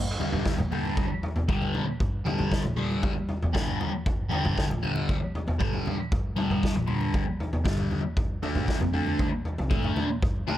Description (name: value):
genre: psychedelic rock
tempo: 117 BPM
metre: 4/4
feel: straight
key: G dorian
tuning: A4 = 440 Hz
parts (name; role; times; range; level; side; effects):
- upright bass; bass; 0.0-10.4 s; C2 to G3; -31 LUFS; equal; none
- thick fuzz guitar; riff; 0.2-10.6 s; G2 to D4; -29 LUFS; left 1 dB; distortion, phaser
- vintage drum kit; drums; 0.2-10.6 s; kick drum, snare drum, toms; -28 LUFS; equal; none
- congas; percussion; 0.2-10.6 s; none; -42 LUFS; right 3 dB; none
room: light reverb, small room ambience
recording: none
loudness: -25 LUFS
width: side -13 dB against mid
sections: 0.0-10.6 A section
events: none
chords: 0.0 Gm; 8.2 Dm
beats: 0.46 0.98 1.49 | 2.01 2.52 3.03 3.55 | 4.06 4.57 5.09 5.60 | 6.11 6.62 7.14 7.65 | 8.16 8.68 9.19 9.70 | 10.22